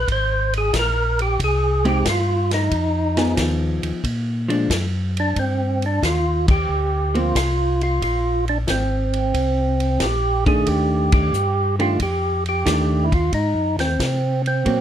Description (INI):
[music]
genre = soul jazz organ trio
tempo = 90 BPM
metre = 4/4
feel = swing 69% on 8ths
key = G minor from 5.4 s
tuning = A4 = 440 Hz
[part]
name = percussive tonewheel organ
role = melody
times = 0.0-14.8 s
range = C4 to C5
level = -21 LUFS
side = right 1 dB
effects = slow rotary speaker, overdrive
[part]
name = mellow tonewheel organ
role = bass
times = 0.0-14.8 s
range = Ab1 to C3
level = -22 LUFS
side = left 1 dB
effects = slow rotary speaker
[part]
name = vintage drum kit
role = drums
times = 0.1-14.8 s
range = hi-hat, kick drum, ride cymbal, snare drum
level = -24 LUFS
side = equal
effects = none
[part]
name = vintage hollow-body jazz guitar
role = accompaniment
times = 1.8-14.8 s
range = Eb3 to Ab4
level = -22 LUFS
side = equal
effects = none
[sound]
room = light reverb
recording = none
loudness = -18 LUFS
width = side -10 dB against mid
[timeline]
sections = 0.0-5.4 A section; 5.4-14.8 B section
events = tonewheel organ solo 0.0-5.4; band accent 6.4-6.7, 11.0-11.3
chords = 0.1 Abmaj7; 2.7 Fm7b5; 4.0 Bb7; 5.4 G7(no3); 8.0 Bb7sus2; 10.7 Ebmaj9#11; 13.3 Ab9